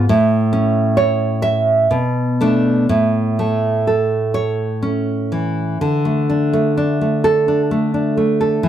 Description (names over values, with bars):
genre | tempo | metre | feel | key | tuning
romantic piece for solo classical guitar | 63 BPM | 3/4 | uneven beats, rubato | unclear | A4 = 439 Hz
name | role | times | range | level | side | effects
nylon-string guitar | solo | 0.0-8.7 s | A2 to E5 | -14 LUFS | right 1 dB | none
room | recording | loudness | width
light reverb | dry, close 1970s-style studio recording | -14 LUFS | side -10 dB against mid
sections
0.0-5.8 A section; 5.8-8.7 B section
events
none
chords
0.1 A; 1.9 Bm7; 2.9 A; 5.8 D5